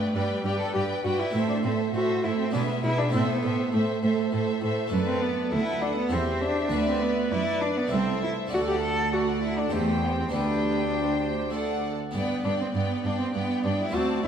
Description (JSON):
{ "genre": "classical, baroque-style concerto movement with solo episodes", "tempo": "100 BPM", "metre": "3/4", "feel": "straight", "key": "G major", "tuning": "A4 = 440 Hz", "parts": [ { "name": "rich cello", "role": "melody", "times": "0.0-14.3 s", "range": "G3 to A4", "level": "-28 LUFS", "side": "left 1 dB", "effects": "none" }, { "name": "rich symphonic violin section", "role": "melody", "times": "0.0-14.3 s", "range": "C5 to A5", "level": "-36 LUFS", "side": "left 6 dB", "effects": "none" }, { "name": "rich chamber violin section", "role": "second line", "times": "0.0-14.3 s", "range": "A4 to E5", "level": "-34 LUFS", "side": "left 1 dB", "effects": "none" }, { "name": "harpsichord", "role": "accompaniment", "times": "0.0-14.3 s", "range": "C2 to G4", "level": "-32 LUFS", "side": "right 2 dB", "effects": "none" }, { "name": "rich chamber viola section", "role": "accompaniment", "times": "0.0-14.3 s", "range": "B3 to B4", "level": "-33 LUFS", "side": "right 3 dB", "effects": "none" }, { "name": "rich symphonic cello section", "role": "bass", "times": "0.1-14.3 s", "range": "C2 to B2", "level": "-30 LUFS", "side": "right 4 dB", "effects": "none" } ], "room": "wet concert hall reverb, RT60 2.0 s", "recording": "none", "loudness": "-24 LUFS", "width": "side -8 dB against mid", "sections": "0.0-12.1 A section; 12.1-14.3 A section", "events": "none", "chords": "0.0 G; 1.3 Am; 2.5 E7/B; 3.1 Am; 4.9 D/F#; 6.1 C/E; 6.7 Bm/D; 7.9 Am/C; 8.5 D; 9.7 C/E; 10.3 G/D; 11.5 D; 12.1 G" }